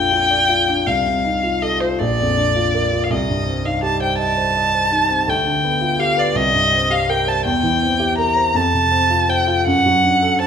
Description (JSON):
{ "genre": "classical, romantic duo for violin and grand piano", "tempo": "55 BPM (dotted quarters)", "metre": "6/8", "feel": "rubato", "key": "unclear", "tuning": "A4 = 440 Hz", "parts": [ { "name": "rich violin", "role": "melody", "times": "0.0-10.5 s", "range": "C5 to Bb5", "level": "-17 LUFS", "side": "left 1 dB", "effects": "none" }, { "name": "warm grand piano", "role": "accompaniment", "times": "0.0-10.5 s", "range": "Bb1 to Eb5", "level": "-19 LUFS", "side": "equal", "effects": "none" } ], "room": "moderate recital hall reverb, RT60 1.6 s", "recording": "minimal, uncompressed stereo recording", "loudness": "-15 LUFS", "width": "side -7 dB against mid", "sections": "0.0-10.5 A section", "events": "none", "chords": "0.0 Bb; 0.9 F7/C; 2.0 Bb; 3.1 Cm; 5.3 G7/D; 6.4 Cm7; 7.5 C7/E; 8.6 F; 9.7 D/F#", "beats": "| 0.86 1.99 | 3.09 4.19 | 5.28 6.37 | 7.45 8.55 | 9.67" }